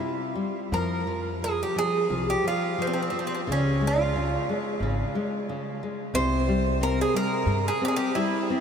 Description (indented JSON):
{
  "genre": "fado-style ballad",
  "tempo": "89 BPM",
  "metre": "4/4",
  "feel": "rubato",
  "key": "F minor",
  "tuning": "A4 = 440 Hz",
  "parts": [
    { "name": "Irish bouzouki", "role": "melody", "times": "0.0-8.6 s", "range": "C4 to C5", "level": "-26 LUFS", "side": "right 2 dB", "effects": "tape echo" },
    { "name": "nylon-string guitar", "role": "accompaniment", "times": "0.0-8.6 s", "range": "C3 to C4", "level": "-29 LUFS", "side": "left 3 dB", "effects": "none" },
    { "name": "upright bass", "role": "bass", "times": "0.7-7.7 s", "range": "Ab1 to G2", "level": "-28 LUFS", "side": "equal", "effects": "none" }
  ],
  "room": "wet huge ambient reverb, RT60 7.6 s",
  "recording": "dreamy mix soaked in reverb",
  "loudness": "-24 LUFS",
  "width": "side -7 dB against mid",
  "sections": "0.0-8.6 A section",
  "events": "none",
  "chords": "0.0 C5; 0.7 F5; 3.5 Db; 6.1 C5"
}